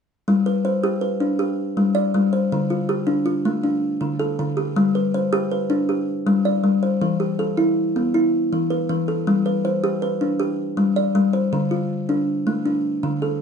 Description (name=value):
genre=southern african traditional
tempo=106 BPM (dotted quarters)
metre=12/8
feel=straight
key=G mixolydian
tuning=A4 = 441 Hz
part: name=kalimba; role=arpeggios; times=0.3-13.4 s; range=D3 to D5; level=-19 LUFS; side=left 1 dB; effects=none
room=light reverb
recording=dark, warm production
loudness=-19 LUFS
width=side -6 dB against mid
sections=0.3-13.4 A section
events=none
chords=0.3 G; 2.5 Dm; 4.8 G; 7.0 Em; 9.3 G; 11.5 Dm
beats=| 0.28 0.84 1.41 1.97 | 2.53 3.09 3.65 4.21 | 4.77 5.33 5.90 6.46 | 7.02 7.58 8.15 8.71 | 9.28 9.84 10.40 10.97 | 11.53 12.10 12.66 13.23